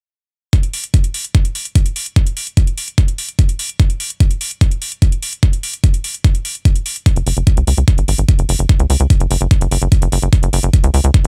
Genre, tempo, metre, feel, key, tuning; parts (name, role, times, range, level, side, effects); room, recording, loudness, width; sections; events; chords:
psychedelic trance; 147 BPM; 4/4; straight; A4 = 440 Hz
electronic hi-hat; drums; 0.5-11.3 s; -25 LUFS; equal
electronic kick drum; drums; 0.5-11.2 s; -14 LUFS; equal
tight sequencer bass; bass; 7.2-11.3 s; Gb1 to Db2; -16 LUFS; equal
little or no reverb; -15 LUFS; mono
0.5-11.3 A section